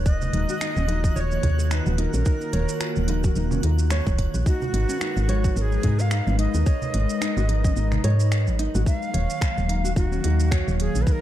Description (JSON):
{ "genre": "organic downtempo", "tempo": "109 BPM", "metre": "4/4", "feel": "swing 56% on 16ths", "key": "Eb minor", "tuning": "A4 = 440 Hz", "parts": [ { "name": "nylon-string guitar", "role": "arpeggios", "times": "0.0-11.2 s", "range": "Db4 to Db5", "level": "-32 LUFS", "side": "right 1 dB", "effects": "ping-pong delay" }, { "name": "woody FM bass", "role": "bass", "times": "0.0-11.0 s", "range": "Eb1 to Ab2", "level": "-22 LUFS", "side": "equal", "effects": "none" }, { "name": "twinkling granular texture", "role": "texture", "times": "0.0-8.9 s", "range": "Gb6", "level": "-43 LUFS", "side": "right 3 dB", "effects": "built-in reverb" }, { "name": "breathy Native American-style cedar flute", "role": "melody", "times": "0.1-11.2 s", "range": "Gb4 to F5", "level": "-31 LUFS", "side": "equal", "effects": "tape echo" }, { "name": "airy breathy pad", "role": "sustained chords", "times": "0.1-11.2 s", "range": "Eb3 to F5", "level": "-30 LUFS", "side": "left 2 dB", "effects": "chorus, sidechain pumping" }, { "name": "electronic kick drum", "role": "drums", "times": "0.1-11.2 s", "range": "none", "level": "-22 LUFS", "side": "equal", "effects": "none" }, { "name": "organic electronic drum kit", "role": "drums", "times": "0.1-11.2 s", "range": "finger snaps, hi-hat, shaker", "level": "-34 LUFS", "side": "right 1 dB", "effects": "none" }, { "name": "congas and bongos", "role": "percussion", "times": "0.2-8.8 s", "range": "none", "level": "-34 LUFS", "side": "right 2 dB", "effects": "none" } ], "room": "light reverb, digital ambience", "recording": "dark, warm production", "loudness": "-20 LUFS", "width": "side -13 dB against mid", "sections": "0.0-8.9 A section; 8.9-11.2 A section", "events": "kick drops out 7.8-8.9", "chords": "0.1 Ebm7; 4.5 Abm11; 8.9 Ebm7", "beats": "| 0.06 0.61 1.16 1.71 | 2.26 2.81 3.36 3.91 | 4.46 5.01 5.56 6.12 | 6.67 7.22 7.77 8.32 | 8.87 9.42 9.97 10.52 | 11.07" }